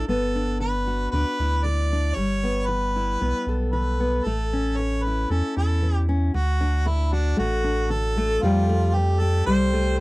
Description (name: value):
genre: acoustic folk duo or small band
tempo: 115 BPM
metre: 4/4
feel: straight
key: unclear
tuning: A4 = 440 Hz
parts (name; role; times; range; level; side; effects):
- clear harmonica; second line; 0.0-9.9 s; D4 to D5; -27 LUFS; right 1 dB; none
- fingerpicked steel-string acoustic guitar; accompaniment; 0.0-10.0 s; D2 to A4; -25 LUFS; left 2 dB; none
- pure sine sub bass; bass; 0.0-10.0 s; G1 to F2; -23 LUFS; equal; none
room: little or no reverb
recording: dry, close 1970s-style studio recording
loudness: -20 LUFS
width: side -21 dB against mid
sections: 0.0-6.3 A section; 6.3-10.0 B section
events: none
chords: 0.1 Gadd9; 2.2 Em/G; 4.3 A; 6.3 D; 8.4 Fadd9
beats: | 0.08 0.60 1.12 1.64 | 2.17 2.69 3.21 3.73 | 4.25 4.78 5.30 5.82 | 6.34 6.86 7.38 7.91 | 8.43 8.95 9.47 9.99